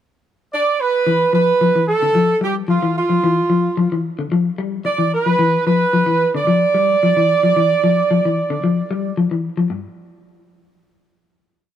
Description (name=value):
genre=afrobeat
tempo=111 BPM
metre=4/4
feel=straight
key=G mixolydian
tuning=A4 = 440 Hz
part: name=warm horn section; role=melody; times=0.5-9.2 s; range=F4 to D5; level=-16 LUFS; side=right 4 dB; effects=none
part: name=electric guitar at the edge of break-up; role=arpeggios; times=1.1-9.9 s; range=G2 to G3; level=-18 LUFS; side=left 4 dB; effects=spring reverb
room=studio reverb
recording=dry, close 1970s-style studio recording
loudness=-14 LUFS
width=side -10 dB against mid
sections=0.0-1.1 pickup bar; 1.1-9.7 groove; 9.7-11.8 final chord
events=none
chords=0.0 N.C.; 1.1 G7 (rootless); 9.7 N.C.